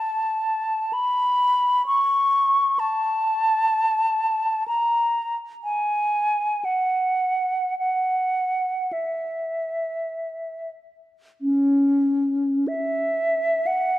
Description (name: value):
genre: classical, free, expressive piece for unaccompanied flute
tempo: 38-66 BPM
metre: 3/4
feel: rubato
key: unclear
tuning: A4 = 440 Hz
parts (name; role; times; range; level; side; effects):
- hollow concert flute; solo; 0.0-14.0 s; C#4 to C#6; -20 LUFS; equal; none
room: moderate concert hall reverb, RT60 2.2 s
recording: dark, warm production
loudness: -20 LUFS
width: side -15 dB against mid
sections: 0.0-11.4 A section; 11.4-14.0 B section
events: none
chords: none